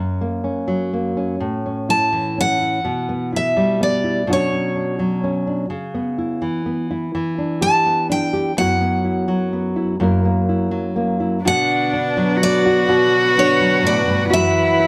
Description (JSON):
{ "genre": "acoustic folk-pop ballad", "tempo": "42 BPM (dotted quarters)", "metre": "6/8", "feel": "straight", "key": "B minor", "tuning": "A4 = 440 Hz", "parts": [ { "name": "nylon-string guitar", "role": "accompaniment", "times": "0.0-14.9 s", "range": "F#2 to A#4", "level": "-22 LUFS", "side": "equal", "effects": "none" }, { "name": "picked steel-string acoustic guitar", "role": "melody", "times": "1.9-14.9 s", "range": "C#5 to A5", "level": "-22 LUFS", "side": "equal", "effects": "none" }, { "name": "warm cello", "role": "second line", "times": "11.4-14.9 s", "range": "D4 to F#4", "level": "-20 LUFS", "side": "equal", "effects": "none" }, { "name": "warm chamber string section", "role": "sustained chords", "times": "11.4-14.9 s", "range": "D3 to F#5", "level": "-28 LUFS", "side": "equal", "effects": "none" } ], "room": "light reverb", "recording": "close, detailed microphones", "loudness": "-19 LUFS", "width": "mono", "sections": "0.0-11.4 A section; 11.4-14.9 B section", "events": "none", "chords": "0.0 F#; 1.4 A; 2.8 G6/B; 4.3 Bmadd9; 5.7 C#m7; 7.1 Em7; 8.6 F#7sus4; 10.0 F#7; 11.4 Bm; 14.3 F#7sus4" }